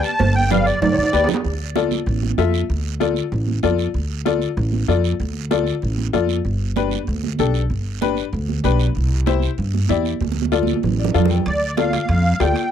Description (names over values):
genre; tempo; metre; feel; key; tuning
latin, cumbia; 192 BPM; 4/4; straight; D dorian; A4 = 438 Hz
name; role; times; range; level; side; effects
musette accordion; melody; 0.0-1.3, 11.5-12.7 s; C#5 to A5; -21 LUFS; equal; tape echo
bright upright piano; accompaniment; 0.0-12.6 s; D4 to G5; -21 LUFS; left 13 dB; none
guiro; percussion; 0.0-12.7 s; none; -35 LUFS; right 18 dB; none
upright bass; bass; 0.2-12.5 s; G1 to G2; -20 LUFS; equal; none
congas; percussion; 0.2-12.6 s; none; -25 LUFS; right 14 dB; none
cowbell and timbales; percussion; 0.2-1.4, 11.5-12.7 s; none; -25 LUFS; right 4 dB; none
room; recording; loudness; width
light reverb; dry, close 1970s-style studio recording; -17 LUFS; side -9 dB against mid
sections
0.0-1.4 A section; 1.4-11.5 B section; 11.5-12.7 C section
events
accordion solo 0.0-1.4; drum fill 0.2-1.4, 10.2-11.5; upright piano fill 10.8-11.5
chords
0.0 G; 1.4 Dm; 6.5 G; 9.0 Cadd9; 10.2 Dm